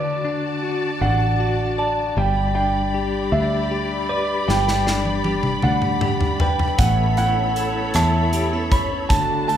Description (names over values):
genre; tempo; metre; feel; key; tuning
six-eight pop ballad; 52 BPM (dotted quarters); 6/8; straight; unclear; A4 = 440 Hz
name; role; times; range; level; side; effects
dark baby grand piano; melody; 0.0-9.6 s; D5 to B5; -23 LUFS; right 3 dB; none
direct-recorded clean electric guitar; accompaniment; 0.0-9.6 s; D3 to D5; -26 LUFS; left 3 dB; tremolo
rich studio string section; sustained chords; 0.0-9.6 s; D4 to B5; -26 LUFS; left 2 dB; none
fingered electric bass; bass; 0.0-9.6 s; G1 to E2; -23 LUFS; equal; none
modern studio drum kit; drums; 4.5-9.6 s; hi-hat, kick drum, rim click, snare drum, toms; -22 LUFS; equal; none
fingerpicked steel-string acoustic guitar; arpeggios; 6.8-9.6 s; A2 to F#4; -30 LUFS; right 4 dB; none
room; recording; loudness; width
moderate scoring stage reverb, RT60 2.1 s; recorded in a church or concert hall; -18 LUFS; side -10 dB against mid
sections
0.0-9.6 A section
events
drum fill 4.5-6.8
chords
0.0 D; 2.2 G; 6.8 Aadd9